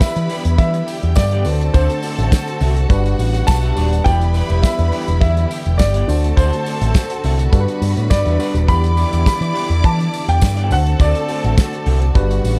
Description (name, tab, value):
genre	disco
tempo	104 BPM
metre	4/4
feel	straight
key	E minor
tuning	A4 = 443 Hz
part	warm baby grand piano	melody	0.0-12.1 s	C5 to B5	-25 LUFS	equal	none
part	clear studio string section	second line	0.0-12.6 s	F#4 to D6	-30 LUFS	equal	none
part	tine electric piano	accompaniment	0.0-12.6 s	D3 to D5	-28 LUFS	equal	tube saturation
part	rich studio string section	sustained chords	0.0-12.6 s	D3 to F#4	-30 LUFS	equal	none
part	picked electric bass with an envelope filter	bass	0.0-12.6 s	D#1 to E3	-18 LUFS	equal	none
part	damped 70s drum kit	drums	0.0-12.6 s	hi-hat, kick drum, snare drum	-19 LUFS	equal	none
part	tambourine	percussion	0.0-12.6 s	none	-38 LUFS	equal	none
part	electric guitar through a small old amp	accompaniment	0.2-12.3 s	B3 to E5	-34 LUFS	equal	none
room	small room ambience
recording	dark, warm production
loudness	-16 LUFS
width	mono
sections	0.0-12.6 A section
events	none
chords	0.0 Em7; 1.5 D7; 2.9 Gmaj7; 4.1 Em7; 6.1 D7; 7.5 Gmaj7; 8.7 Em7; 10.7 D7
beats	0.01 0.59 1.17 | 1.74 2.32 2.90 3.48 | 4.06 4.64 5.21 5.79 | 6.37 6.95 7.53 8.11 | 8.69 9.26 9.84 10.42 | 11.00 11.57 12.15